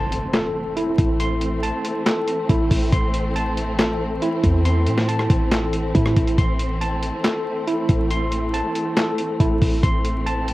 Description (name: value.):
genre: hip hop, trap.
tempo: 139 BPM.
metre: 4/4.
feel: half-time.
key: A minor.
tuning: A4 = 440 Hz.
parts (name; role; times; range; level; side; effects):
warm studio string section; sustained chords; 0.0-10.5 s; E3 to C4; -27 LUFS; left 1 dB; cassette tape.
tine electric piano; arpeggios; 0.0-10.5 s; E4 to C6; -24 LUFS; equal; overdrive, fast stereo tremolo, cassette tape, tape echo.
clean 808-style bass; bass; 0.0-10.5 s; A1 to A2; -22 LUFS; equal; none.
impact; sound effects; 0.0-1.2 s; none; -36 LUFS; equal; none.
boom bap sampler-style drum kit; drums; 0.1-10.5 s; handclaps, hi-hat, kick drum, rim click, snare drum; -21 LUFS; equal; cassette tape.
room: light reverb.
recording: home recording on cassette, vinyl crackle.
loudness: -18 LUFS.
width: side -17 dB against mid.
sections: 0.0-10.5 A section.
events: impact 0.0-1.2.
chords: 0.0 Am.